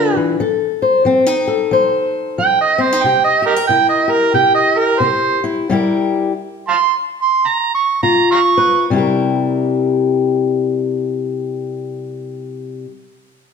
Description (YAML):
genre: acoustic country blues, solo or duo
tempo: 66-93 BPM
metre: 4/4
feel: swing 62% on 8ths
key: C mixolydian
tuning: A4 = 440 Hz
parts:
  - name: overdriven harmonica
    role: melody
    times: 0.0-8.9 s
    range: Eb4 to Db6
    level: -14 LUFS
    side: right 5 dB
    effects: none
  - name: fingerpicked steel-string acoustic guitar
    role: accompaniment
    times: 0.0-12.9 s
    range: C3 to C5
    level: -16 LUFS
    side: left 4 dB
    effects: none
room: wet stone room reverb, RT60 1.4 s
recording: band playing live in one room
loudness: -13 LUFS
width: side -6 dB against mid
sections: 0.0-8.9 A section; 8.9-12.5 B section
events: harmonica solo 0.0-8.9; slowing down 3.0-8.9; stop 5.7-8.0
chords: 0.4 F7; 3.0 C7; 8.0 Db7; 8.9 C7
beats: | 0.43 1.07 1.72 2.37 | 3.01 3.66 4.32 5.00 | 5.70 6.43 7.20 8.02 | 8.89 9.81 10.72 11.63